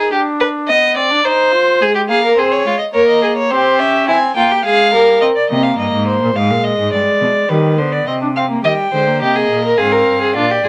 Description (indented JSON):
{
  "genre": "classical, baroque-style fugue for string quartet",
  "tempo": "106 BPM",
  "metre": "3/4",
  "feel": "straight",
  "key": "F minor",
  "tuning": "A4 = 441 Hz",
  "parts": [
    { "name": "rich violin", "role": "second line", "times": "0.0-5.2, 8.6-10.7 s", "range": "E4 to Eb5", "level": "-16 LUFS", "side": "equal", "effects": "none" },
    { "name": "warm viola", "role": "accompaniment", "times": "0.0-10.7 s", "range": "G3 to F4", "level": "-22 LUFS", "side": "equal", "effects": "none" },
    { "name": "dark violin", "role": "melody", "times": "2.1-10.7 s", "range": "B4 to Ab5", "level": "-18 LUFS", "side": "equal", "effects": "none" },
    { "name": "warm cello", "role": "bass", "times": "5.5-10.7 s", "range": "G2 to Eb3", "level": "-21 LUFS", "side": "equal", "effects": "none" }
  ],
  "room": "moderate studio reverb, RT60 0.6 s",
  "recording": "none",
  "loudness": "-14 LUFS",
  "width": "mono",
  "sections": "0.0-8.6 A section; 8.6-10.7 B section",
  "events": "none",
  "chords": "0.1 G/D (rootless); 1.2 Cm/Eb; 1.8 Fm/Ab; 2.9 Bbm; 3.5 C; 4.7 Fm/Ab; 5.2 Cm; 6.4 Fm/Ab; 6.9 G; 8.1 N.C.; 8.6 Cm; 9.8 Fm/Ab"
}